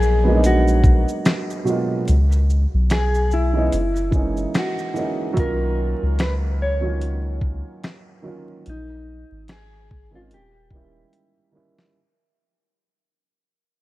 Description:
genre	lo-fi hip hop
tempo	73 BPM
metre	4/4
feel	swing 57% on 16ths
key	G# dorian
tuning	A4 = 444 Hz
part	mellow electric guitar	melody	0.0-11.5 s	D#4 to C#5	-26 LUFS	left 1 dB	lush chorus, analog delay
part	dark upright piano	accompaniment	0.0-12.0 s	B2 to E#4	-24 LUFS	right 2 dB	cassette tape
part	soft dub sub bass	bass	0.0-11.0 s	D#1 to C#2	-19 LUFS	equal	none
part	dusty soul sampler-style drum kit	drums	0.0-11.9 s	finger snaps, hi-hat, kick drum, shaker, snare drum	-21 LUFS	equal	none
room	light reverb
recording	vinyl crackle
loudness	-17 LUFS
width	side -17 dB against mid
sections	0.0-11.9 A section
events	fade-out 0.0-11.9; drum fill 11.1-11.9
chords	0.0 G#m9; 2.1 C#m7; 3.7 F#13; 5.4 Bmaj9#11; 8.7 A#7sus4; 10.3 D#7b9

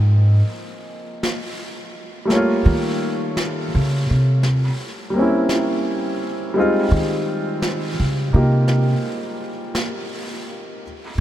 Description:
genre	jazz ballad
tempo	56 BPM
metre	4/4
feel	swing 68% on 8ths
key	unclear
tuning	A4 = 440 Hz
part	clear baby grand piano	accompaniment	0.0-10.8 s	F3 to Db5	-22 LUFS	equal	none
part	upright bass	bass	0.0-11.2 s	Ab2 to Eb3	-17 LUFS	equal	none
part	brushed snare drum and snare drum	drums	0.2-11.2 s	none	-29 LUFS	equal	none
room	moderate huge ambient reverb, RT60 7.6 s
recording	dreamy mix soaked in reverb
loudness	-17 LUFS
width	side -12 dB against mid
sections	0.0-11.2 A section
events	upright bass solo 0.0-11.2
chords	0.0 Ab69; 2.3 Gm7b5; 4.4 C7b9; 6.6 Fm9

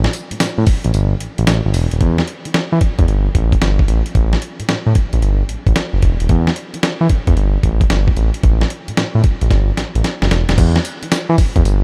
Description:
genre	R&B, new jack swing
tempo	112 BPM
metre	4/4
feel	swing 66% on 16ths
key	unclear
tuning	A4 = 444 Hz
part	smooth gliding synth bass	bass	0.0-11.8 s	D#1 to E3	-18 LUFS	equal	none
part	dusty soul sampler-style drum kit	drums	0.0-11.8 s	crash cymbal, hi-hat, kick drum, snare drum, tambourine	-19 LUFS	equal	none
room	light reverb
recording	none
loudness	-16 LUFS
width	mono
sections	0.0-2.0 A section; 2.0-10.6 B section; 10.6-11.8 A section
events	kick muted 0.9-2.0; drum fill 9.5-10.6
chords	none

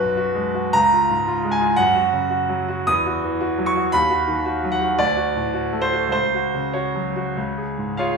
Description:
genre	classical, romantic character piece for solo piano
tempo	95-119 BPM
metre	4/4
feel	rubato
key	F# major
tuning	A4 = 440 Hz
part	bright concert grand piano	solo	0.0-8.2 s	B1 to D#6	-18 LUFS	right 1 dB	none
room	wet recital hall reverb, RT60 1.5 s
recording	recorded in a church or concert hall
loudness	-18 LUFS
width	side -4 dB against mid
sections	0.0-8.2 A section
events	none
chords	0.0 G#m7/B; 0.7 C#; 1.8 F#5; 2.9 C#madd11/E; 3.9 B/D#; 5.0 D; 6.1 F#5/C#; 7.4 C#

